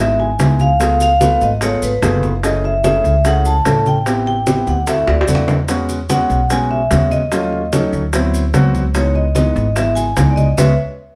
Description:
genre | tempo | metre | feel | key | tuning
Afro-Cuban jazz | 147 BPM | 4/4 | straight | C# minor | A4 = 442 Hz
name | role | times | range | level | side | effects
vibraphone with medium hard mallets | melody | 0.0-10.7 s | B4 to A5 | -20 LUFS | equal | none
warm grand piano | accompaniment | 0.0-10.7 s | E3 to B4 | -22 LUFS | equal | none
upright bass | bass | 0.0-10.7 s | F#1 to E2 | -20 LUFS | equal | none
bongos | percussion | 0.2-10.7 s | none | -25 LUFS | equal | none
congas | percussion | 0.2-10.7 s | none | -22 LUFS | equal | none
maracas | percussion | 0.4-10.7 s | none | -33 LUFS | equal | none
room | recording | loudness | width
wet studio reverb, RT60 0.7 s | heard from further back in the room | -15 LUFS | mono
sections
0.0-11.2 A section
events
drum fill 5.1-5.7; band accent 10.6-11.2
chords
0.0 C#m9; 0.8 C#7b13; 2.4 F#m9; 4.1 Am7; 4.9 D9; 5.7 E6; 7.3 D#m7b5; 8.1 D13; 8.9 C#m9

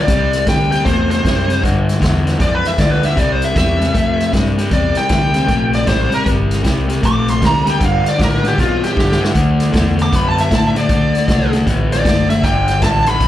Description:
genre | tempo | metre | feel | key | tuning
electric blues shuffle | 155 BPM | 4/4 | swing 63% on 8ths | G mixolydian | A4 = 444 Hz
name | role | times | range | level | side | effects
smooth overdriven lead guitar | melody | 0.0-13.3 s | F4 to D6 | -18 LUFS | equal | slapback echo
raw garage guitar | riff | 0.0-13.3 s | G2 to B3 | -17 LUFS | left 2 dB | overdrive
fingered electric bass | bass | 0.0-13.3 s | F#1 to B2 | -18 LUFS | equal | none
vintage drum kit | drums | 0.1-13.3 s | hi-hat, kick drum, snare drum | -19 LUFS | equal | none
room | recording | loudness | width
light reverb | live gig heard through the venue's PA, club reverb | -12 LUFS | side -12 dB against mid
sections
0.0-13.3 A section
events
lead electric guitar solo 0.0-13.3; drum fill 9.0-9.4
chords
0.1 Cadd9; 1.6 G5; 3.2 C9; 7.8 Gadd9; 9.4 D9; 12.4 Gadd9

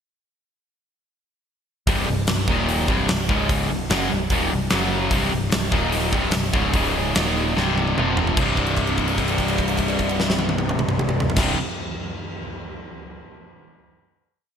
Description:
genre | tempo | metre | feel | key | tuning
hard rock | 148 BPM | 4/4 | straight | C minor | A4 = 440 Hz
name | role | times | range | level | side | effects
cranked stack guitar | riff | 1.9-11.6 s | C2 to F#3 | -24 LUFS | left 9 dB | overdrive
crunchy overdriven guitar | riff | 1.9-11.6 s | C2 to F#3 | -25 LUFS | right 8 dB | analog chorus
picked electric bass | bass | 1.9-11.5 s | C1 to F#1 | -27 LUFS | equal | none
huge arena drum kit | drums | 1.9-11.5 s | crash cymbal, hi-hat, kick drum, snare drum, toms | -23 LUFS | right 1 dB | gated reverb
room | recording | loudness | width
moderate lush hall reverb, RT60 1.6 s, small room ambience | bright 1980s-style digital production | -19 LUFS | side -8 dB against mid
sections
1.9-8.4 riff; 8.4-11.6 final chord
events
drum fill 7.6-8.4; held note 8.4-11.4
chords
1.9 C5; 2.5 Eb5; 2.9 C5; 3.3 Db5; 3.7 Cm; 4.7 F#5; 5.1 C5; 5.7 Eb5; 6.1 C5; 6.7 Db5; 7.2 Eb5; 7.6 C5; 8.0 F5; 8.4 C5

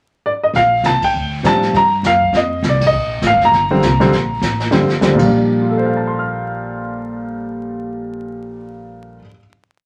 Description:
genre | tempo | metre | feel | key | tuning
jazz piano trio | 201 BPM | 4/4 | swing 60% on 8ths | Bb major | A4 = 440 Hz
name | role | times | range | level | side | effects
clear grand piano | melody | 0.3-9.5 s | Bb2 to F6 | -17 LUFS | equal | none
upright bass | bass | 0.5-9.2 s | F1 to A2 | -24 LUFS | equal | none
jazz brush drum kit | drums | 0.5-5.2 s | brushed snare drum, crash cymbal, hi-hat, kick drum, ride cymbal, snare drum | -25 LUFS | equal | none
room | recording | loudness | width
wet club reverb, RT60 0.5 s | vinyl crackle | -15 LUFS | mono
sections
0.0-0.5 pickup bar; 0.5-5.3 A section; 5.3-7.7 final chord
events
band accent 1.0, 2.8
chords
0.0 N.C.; 0.5 Bb6; 1.7 Gbmaj7; 2.3 F5; 2.9 Bb6

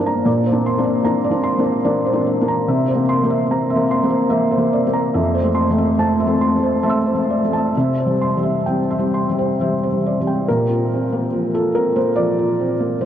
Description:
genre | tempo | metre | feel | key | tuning
neoclassical minimalist piano | 65-75 BPM | 3/4 | rubato | unclear | A4 = 439 Hz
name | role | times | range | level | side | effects
felt-muted upright piano | solo | 0.0-13.1 s | F2 to E6 | -16 LUFS | equal | analog delay
room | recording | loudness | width
wet huge ambient reverb, RT60 7.7 s | dreamy mix soaked in reverb, cassette tape | -16 LUFS | side -10 dB against mid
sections
0.0-10.5 A section; 10.5-13.1 B section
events
none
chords
0.3 Bbadd9; 2.7 C7; 5.1 Fmaj7; 7.7 C; 10.5 Bbsus2

